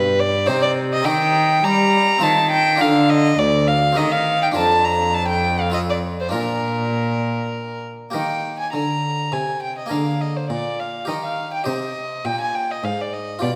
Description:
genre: classical, baroque-style sonata movement with continuo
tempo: 102 BPM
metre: 3/4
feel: straight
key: Bb major, Eb major from 8.1 s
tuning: A4 = 440 Hz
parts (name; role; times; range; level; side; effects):
- rich violin; melody; 0.0-13.5 s; Bb4 to Bb5; -22 LUFS; equal; none
- harpsichord; accompaniment; 0.0-13.6 s; D2 to C5; -28 LUFS; equal; none
- rich cello; bass; 0.0-13.6 s; D2 to G3; -24 LUFS; equal; none
room: wet recital hall reverb, RT60 1.4 s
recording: none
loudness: -20 LUFS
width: mono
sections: 0.0-8.1 A section; 8.1-13.6 A section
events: none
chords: 0.5 Cm; 1.1 Cm7/Eb; 2.2 F7/Eb; 2.8 Bb/D; 4.0 Cm7/Eb; 4.6 Bb/F; 5.7 F; 6.3 Bb; 8.1 Eb; 9.9 Bb7/D; 11.1 Eb; 11.7 Cm

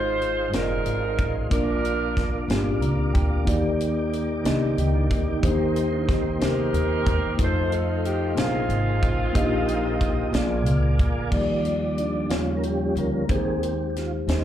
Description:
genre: slow gospel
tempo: 61 BPM (dotted quarters)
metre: 6/8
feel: straight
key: Eb major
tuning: A4 = 443 Hz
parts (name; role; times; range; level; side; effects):
- mellow saxophone section; melody; 0.0-2.5, 6.4-11.0 s; Ab3 to C5; -27 LUFS; right 2 dB; plate reverb, slapback echo
- mellow tine electric piano; accompaniment; 0.0-14.4 s; Ab2 to Bb5; -26 LUFS; left 2 dB; medium stereo tremolo, plate reverb, slapback echo
- tonewheel organ; sustained chords; 0.0-14.4 s; F3 to Eb6; -31 LUFS; right 2 dB; slow rotary speaker, chorus vibrato, plate reverb
- upright bass; bass; 0.0-14.4 s; F1 to F2; -26 LUFS; equal; none
- tight funk drum kit; drums; 0.2-14.4 s; crash cymbal, hi-hat, kick drum, snare drum; -26 LUFS; equal; none
- mellow electric guitar; second line; 4.5-7.2 s; Bb3 to C5; -33 LUFS; right 8 dB; wide subtle chorus, plate reverb, slapback echo
room: light reverb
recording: live gig heard through the venue's PA, club reverb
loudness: -21 LUFS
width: side -11 dB against mid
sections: 0.0-11.3 A section; 11.3-14.4 B section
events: tonewheel organ solo 11.3-14.4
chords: 0.0 Fm7/Ab; 1.5 Bb; 3.5 Ebmaj7; 5.4 Cm7/Eb; 7.4 F7; 8.4 Bb9sus4; 9.4 Eb/Bb; 10.3 Bb7; 11.3 Ebmaj7; 12.3 Eb7; 13.3 Abmaj7/Eb

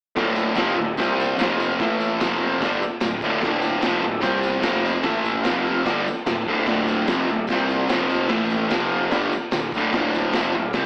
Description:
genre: garage rock duo or trio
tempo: 148 BPM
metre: 4/4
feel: straight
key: D minor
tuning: A4 = 444 Hz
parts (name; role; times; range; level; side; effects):
- combo organ; sustained chords; 0.2-10.9 s; E4 to A5; -33 LUFS; equal; none
- fuzz guitar; riff; 0.2-10.9 s; D2 to C4; -24 LUFS; equal; distortion
- fuzz picked electric bass; bass; 0.2-10.9 s; D1 to C2; -32 LUFS; equal; overdrive
- raw garage drum kit; drums; 0.2-10.8 s; crash cymbal, kick drum, snare drum; -28 LUFS; equal; none
- tambourine; percussion; 0.4-10.8 s; none; -44 LUFS; equal; none
room: light reverb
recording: AM radio sound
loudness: -22 LUFS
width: mono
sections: 0.2-10.9 A section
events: transistor combo organ fill 5.5-6.7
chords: 0.2 Dm; 1.0 C5; 1.4 F5; 1.8 A5; 2.2 F5; 2.6 Dm; 4.2 C5; 4.6 F5; 5.0 A5; 5.5 F5; 5.9 Dm; 7.5 C5; 7.9 F5; 8.3 A5; 8.7 F5; 9.1 Dm

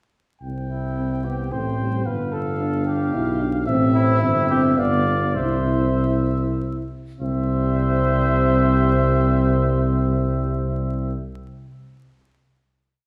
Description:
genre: classical, brass quintet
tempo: 95-112 BPM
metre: 3/4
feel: straight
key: C major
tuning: A4 = 439 Hz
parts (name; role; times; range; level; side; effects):
- warm trumpet; melody; 0.4-11.1 s; E5 to G5; -30 LUFS; equal; none
- mellow euphonium; accompaniment; 0.4-11.1 s; G3 to C4; -31 LUFS; equal; none
- mellow tuba; bass; 0.4-11.1 s; G1 to C2; -24 LUFS; equal; none
- warm flugelhorn; second line; 0.7-11.1 s; E4 to D5; -30 LUFS; equal; none
- mellow French horn; accompaniment; 1.0-11.1 s; G3 to E4; -28 LUFS; equal; none
room: wet recital hall reverb, RT60 1.5 s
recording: heard from further back in the room, vinyl crackle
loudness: -21 LUFS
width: mono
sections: 0.4-7.2 A section; 7.2-11.0 final chord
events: slowing down 2.9-7.2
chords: 0.4 C; 2.1 G7; 3.7 Am; 4.2 C/G; 4.8 G7; 5.4 C

